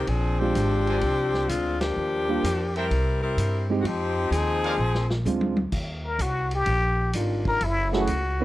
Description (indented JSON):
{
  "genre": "jazz, big band swing",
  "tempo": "128 BPM",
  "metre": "4/4",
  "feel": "swing 68% on 8ths",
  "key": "Eb major",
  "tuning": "A4 = 440 Hz",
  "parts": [
    { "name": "bright saxophone section", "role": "melody", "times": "0.0-5.1 s", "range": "F3 to Bb4", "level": "-25 LUFS", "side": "left 2 dB", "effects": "none" },
    { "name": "upright bass", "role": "bass", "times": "0.0-8.4 s", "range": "Gb1 to G2", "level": "-26 LUFS", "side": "equal", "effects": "none" },
    { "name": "vintage drum kit", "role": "drums", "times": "0.1-8.2 s", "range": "crash cymbal, hi-hat, kick drum, ride cymbal, snare drum, toms", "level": "-34 LUFS", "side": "equal", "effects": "none" },
    { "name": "warm grand piano", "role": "accompaniment", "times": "0.4-8.4 s", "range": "G3 to Ab4", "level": "-26 LUFS", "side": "right 4 dB", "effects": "none" },
    { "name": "brilliant trumpet section", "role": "stabs", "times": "0.9-4.7 s", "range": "Ab4 to Ab5", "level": "-33 LUFS", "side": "right 1 dB", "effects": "none" },
    { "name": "trumpet with plunger mute", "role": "melody", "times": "6.1-8.4 s", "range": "Fb4 to Bb4", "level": "-25 LUFS", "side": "left 2 dB", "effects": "none" },
    { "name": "warm trombone section", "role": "sustained chords", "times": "7.1-8.0 s", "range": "Eb3 to Gb4", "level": "-30 LUFS", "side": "equal", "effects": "none" }
  ],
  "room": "little or no reverb",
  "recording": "dry, close 1970s-style studio recording",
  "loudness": "-22 LUFS",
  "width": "side -16 dB against mid",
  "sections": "0.0-5.7 A section; 5.7-8.4 B section",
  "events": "band accent 1.7; drum fill 4.8-5.7; muted trumpet solo 5.7-8.4",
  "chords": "0.1 Bb9; 2.0 Ebmaj9; 2.9 C7; 3.8 Fm7; 4.8 Bb7; 5.7 Ebmaj9; 7.6 Gbm7"
}